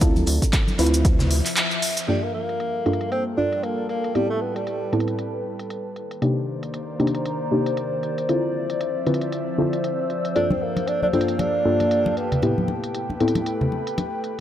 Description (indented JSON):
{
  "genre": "deep house",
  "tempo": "116 BPM",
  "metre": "4/4",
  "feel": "swing 58% on 16ths",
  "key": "G dorian",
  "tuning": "A4 = 441 Hz",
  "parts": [
    { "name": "deep mellow chord stab", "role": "stabs", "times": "0.0-14.2 s", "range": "G2 to B4", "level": "-25 LUFS", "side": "left 1 dB", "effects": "chorus, sidechain pumping, analog delay" },
    { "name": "rubbery square bass", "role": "bass", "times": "0.0-1.4 s", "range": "D2", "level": "-21 LUFS", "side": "equal", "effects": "sidechain pumping" },
    { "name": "deep house drum kit", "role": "drums", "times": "0.0-14.4 s", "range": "handclaps, hi-hat", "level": "-27 LUFS", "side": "equal", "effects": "low-pass filter on hats, low-pass filter on snare" },
    { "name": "electronic kick drum", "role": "drums", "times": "0.0-1.2 s", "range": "none", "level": "-19 LUFS", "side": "equal", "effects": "none" },
    { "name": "oversized low-tuned drum kit", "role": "drums", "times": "0.0-2.1 s", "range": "hi-hat, shaker, snare drum", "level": "-37 LUFS", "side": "equal", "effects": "sidechain pumping on hats, high-pass filter on hats, high-pass filter on snare, sidechain pumping on perc, high-pass filter on perc, high-pass filter on room" },
    { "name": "cabasa", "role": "percussion", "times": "0.0-2.1 s", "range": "none", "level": "-32 LUFS", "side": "right 2 dB", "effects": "none" },
    { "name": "warbly tape-like pad", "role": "texture", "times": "0.0-14.4 s", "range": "Eb3 to E6", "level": "-29 LUFS", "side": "left 2 dB", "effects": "chorus, built-in reverb, sidechain pumping" },
    { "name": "congas", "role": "percussion", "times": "0.2-1.3, 10.5-14.1 s", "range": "none", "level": "-26 LUFS", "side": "equal", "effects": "none" },
    { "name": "mellow tenor saxophone", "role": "melody", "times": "2.1-5.1, 10.4-12.9 s", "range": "G3 to D4", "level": "-25 LUFS", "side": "right 2 dB", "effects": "analog delay" },
    { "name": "airy breathy pad", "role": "sustained chords", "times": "2.5-14.4 s", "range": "Eb3 to F5", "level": "-32 LUFS", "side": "equal", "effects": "chorus, sidechain pumping" }
  ],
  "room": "moderate lush hall reverb, RT60 1.9 s",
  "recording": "dry, gritty hardware recording",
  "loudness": "-20 LUFS",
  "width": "side -11 dB against mid",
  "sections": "0.0-2.1 A section; 2.1-14.4 B section",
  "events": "break 1.6-2.1; band accent 1.6; filter sweep on analog synth pad 2.1-14.4",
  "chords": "0.0 Dm9; 2.1 Gm9; 4.2 Am9; 6.0 Cm9; 8.3 Dm9; 10.4 Gm9; 12.4 Am9",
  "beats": "| 0.01 0.53 1.05 1.57 | 2.08 2.60 3.12 3.63 | 4.15 4.67 5.19 5.70 | 6.22 6.74 7.25 7.77 | 8.29 8.81 9.32 9.84 | 10.36 10.88 11.39 11.91 | 12.43 12.95 13.46 13.98"
}